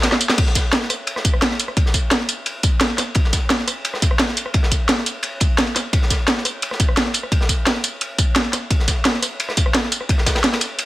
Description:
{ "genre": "drum and bass", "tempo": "173 BPM", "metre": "4/4", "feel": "straight", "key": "none", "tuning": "none", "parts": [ { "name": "crunchy breakbeat drum kit", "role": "drums", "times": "0.0-10.9 s", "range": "ride cymbal, snare drum", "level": "-24 LUFS", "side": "equal", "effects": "high-pass filter on cymbals, high-pass filter on snare, high-pass filter on room" }, { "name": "drum and bass drum kit", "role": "drums", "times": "0.0-10.9 s", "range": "crash cymbal, hi-hat, rim click, snare drum, tambourine", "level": "-19 LUFS", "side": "equal", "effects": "none" }, { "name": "electronic kick drum", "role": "drums", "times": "0.4-10.3 s", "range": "none", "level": "-18 LUFS", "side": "equal", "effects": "none" } ], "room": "little or no reverb", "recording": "none", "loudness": "-16 LUFS", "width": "side -16 dB against mid", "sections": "0.0-10.9 A section", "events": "drum fill 0.0-0.4", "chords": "none" }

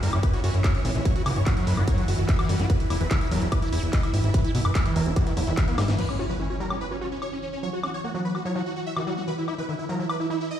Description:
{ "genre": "psychedelic trance", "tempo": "146 BPM", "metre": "4/4", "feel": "straight", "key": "unclear", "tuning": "A4 = 437 Hz", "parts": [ { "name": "dense compressed supersaw", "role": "melody", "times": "0.0-10.6 s", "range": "C#4 to E5", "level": "-32 LUFS", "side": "right 1 dB", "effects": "phaser, cassette tape, sidechain pumping, digital delay" }, { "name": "swarming drone", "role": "sustained chords", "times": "0.0-10.6 s", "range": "E3 to E4", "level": "-33 LUFS", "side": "right 1 dB", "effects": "built-in reverb, sidechain pumping" }, { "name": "overdriven acid bass", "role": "riff", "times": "0.0-10.4 s", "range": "D#3 to F#4", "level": "-31 LUFS", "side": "moving between left 5 dB and right 5 dB", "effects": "distortion, auto-pan, sidechain pumping, digital delay" }, { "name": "fat analog bass", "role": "bass", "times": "0.0-5.9 s", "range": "E1 to C#2", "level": "-23 LUFS", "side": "equal", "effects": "none" }, { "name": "techno drum kit", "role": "drums", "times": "0.0-10.2 s", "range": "crash cymbal, handclaps, hi-hat, snare drum, woodblock", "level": "-33 LUFS", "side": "left 1 dB", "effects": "none" }, { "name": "electronic kick drum", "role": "drums", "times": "0.2-5.7 s", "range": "none", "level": "-24 LUFS", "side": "equal", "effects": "distortion" }, { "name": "impact", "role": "sound effects", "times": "6.0-7.6 s", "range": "none", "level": "-33 LUFS", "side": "equal", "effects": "none" } ], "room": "digital ambience", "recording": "played on a big sound system in a bare room, large studio reverb", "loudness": "-22 LUFS", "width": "side -10 dB against mid", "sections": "0.0-6.0 A section; 6.0-10.6 B section", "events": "drop 0.0-6.0; drum fill 5.8; impact 6.0-7.6; filter sweep on synth drone 6.0-10.6", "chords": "0.0 F#5; 2.7 E5; 6.0 F#5; 9.3 E5" }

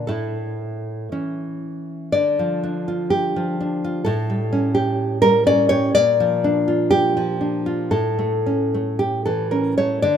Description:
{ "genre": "romantic piece for solo classical guitar", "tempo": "56-65 BPM", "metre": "2/4", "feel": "rubato", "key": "unclear", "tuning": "A4 = 440 Hz", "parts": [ { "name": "nylon-string guitar", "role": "solo", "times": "0.0-10.2 s", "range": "A2 to D5", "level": "-18 LUFS", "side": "equal", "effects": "none" } ], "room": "light reverb, small room ambience", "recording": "rough home demo mix", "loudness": "-18 LUFS", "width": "side -8 dB against mid", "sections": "0.0-2.1 A section; 2.1-10.2 B section", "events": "none", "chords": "0.1 A; 2.1 Dm; 4.1 A7; 6.0 Bb; 7.9 A" }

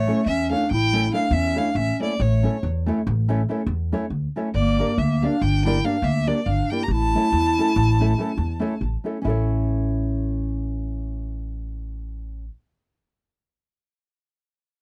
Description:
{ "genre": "balkan folk", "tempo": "281 BPM (eighths)", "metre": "11/8", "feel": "straight", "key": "A phrygian dominant", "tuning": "A4 = 440 Hz", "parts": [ { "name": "rich violin", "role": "melody", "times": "0.0-8.8 s", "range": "C#5 to Bb5", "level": "-28 LUFS", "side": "equal", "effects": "none" }, { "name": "dark clarinet", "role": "second line", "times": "0.0-8.8 s", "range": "A3 to G4", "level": "-27 LUFS", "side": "equal", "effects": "none" }, { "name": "upright bass", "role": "bass", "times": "0.0-12.5 s", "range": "G1 to E2", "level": "-26 LUFS", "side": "equal", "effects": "none" }, { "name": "nylon-string guitar", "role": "accompaniment", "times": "0.1-12.5 s", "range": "A3 to D5", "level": "-29 LUFS", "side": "equal", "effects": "none" } ], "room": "light reverb", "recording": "dry, close 1970s-style studio recording", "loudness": "-22 LUFS", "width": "mono", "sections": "0.0-9.2 A section; 9.2-11.6 B section", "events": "none", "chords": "0.0 A; 4.5 Gm; 6.9 A" }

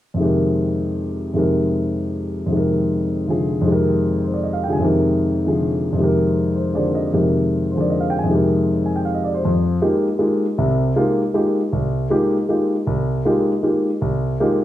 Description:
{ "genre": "jazz", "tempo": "156 BPM", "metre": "3/4", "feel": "swing 63% on 8ths", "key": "F dorian", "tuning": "A4 = 441 Hz", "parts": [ { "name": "warm concert grand piano", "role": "solo", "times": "0.1-14.6 s", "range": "C2 to Ab5", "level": "-17 LUFS", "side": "equal", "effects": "none" } ], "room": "wet large studio reverb, RT60 0.8 s", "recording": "band playing live in one room", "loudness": "-17 LUFS", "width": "side -13 dB against mid", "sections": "0.2-9.4 A section; 9.4-14.6 B section", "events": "none", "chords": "0.2 Fm11" }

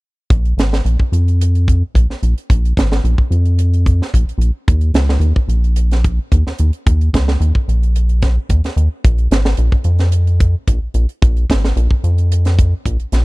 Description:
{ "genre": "afrobeat", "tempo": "110 BPM", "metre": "4/4", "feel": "straight", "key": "Bb minor", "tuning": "A4 = 441 Hz", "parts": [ { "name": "rubbery square bass", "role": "bass", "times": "0.3-13.2 s", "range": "Ab1 to F2", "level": "-13 LUFS", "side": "equal", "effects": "none" }, { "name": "tight funk drum kit", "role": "drums", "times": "0.3-13.2 s", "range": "hi-hat, kick drum, snare drum", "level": "-16 LUFS", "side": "equal", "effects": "none" } ], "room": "little or no reverb", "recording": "dry, close 1970s-style studio recording", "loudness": "-12 LUFS", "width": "side -23 dB against mid", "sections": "0.3-13.2 A section", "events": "none", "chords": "none" }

